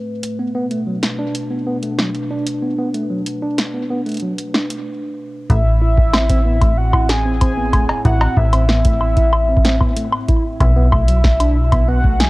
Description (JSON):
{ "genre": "IDM", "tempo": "94 BPM", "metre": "4/4", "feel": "straight", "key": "A melodic minor", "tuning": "A4 = 440 Hz", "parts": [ { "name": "warbly tape-like pad", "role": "sustained chords", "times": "0.0-12.3 s", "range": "A2 to B4", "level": "-25 LUFS", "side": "equal", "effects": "chorus, built-in reverb, vintage 12-bit sampler grit, cassette tape" }, { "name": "electro analog drum machine", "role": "drums", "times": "0.2-12.3 s", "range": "cowbell, hi-hat, snare drum, woodblock", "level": "-21 LUFS", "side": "equal", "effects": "small room ambience, cassette tape" }, { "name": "tine electric piano", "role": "arpeggios", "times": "0.4-12.3 s", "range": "F#3 to E4", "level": "-23 LUFS", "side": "right 1 dB", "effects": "cassette tape, analog delay" }, { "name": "warm velvety synth lead", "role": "melody", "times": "5.5-12.3 s", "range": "E5 to G#5", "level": "-21 LUFS", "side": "equal", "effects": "chorus, tremolo, cassette tape, analog delay" }, { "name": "metallic FM bass", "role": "bass", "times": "5.5-12.3 s", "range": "E1 to B1", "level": "-16 LUFS", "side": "equal", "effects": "none" }, { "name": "electronic kick drum", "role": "drums", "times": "5.5-12.2 s", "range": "none", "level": "-16 LUFS", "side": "equal", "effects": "small room ambience, cassette tape" } ], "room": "light reverb", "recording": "home recording on cassette", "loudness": "-14 LUFS", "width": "side -21 dB against mid", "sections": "0.0-5.5 A section; 5.5-12.3 B section", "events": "stop 4.9-5.5", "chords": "0.4 Bm7; 5.5 Am; 10.6 Bm" }